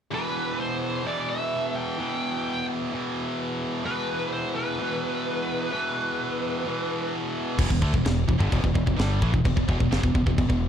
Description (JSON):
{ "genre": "heavy metal", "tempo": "129 BPM", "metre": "4/4", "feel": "straight", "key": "E minor", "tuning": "A4 = 440 Hz", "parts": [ { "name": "high-gain lead guitar", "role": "melody", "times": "0.1-7.1 s", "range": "B4 to G5", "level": "-30 LUFS", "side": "equal", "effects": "distortion" }, { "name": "heavy high-gain guitar", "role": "riff", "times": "0.1-10.7 s", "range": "E2 to A3", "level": "-27 LUFS", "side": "equal", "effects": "distortion" }, { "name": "growling fingered electric bass", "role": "bass", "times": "7.6-10.7 s", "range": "E1 to D2", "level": "-25 LUFS", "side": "equal", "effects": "overdrive" }, { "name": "tight metal drum kit", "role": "drums", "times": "7.6-10.6 s", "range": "china cymbal, crash cymbal, kick drum, snare drum", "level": "-26 LUFS", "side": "equal", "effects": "none" } ], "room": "little or no reverb", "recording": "dark, warm production", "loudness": "-24 LUFS", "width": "side -9 dB against mid", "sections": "0.1-7.6 A section; 7.6-10.7 B section", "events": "none", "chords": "0.1 E5; 7.6 Em", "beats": "| 0.12 0.59 1.05 1.52 | 1.99 2.46 2.92 3.39 | 3.85 4.32 4.79 5.25 | 5.72 6.19 6.65 7.12 | 7.58 8.05 8.51 8.98 | 9.44 9.91 10.37" }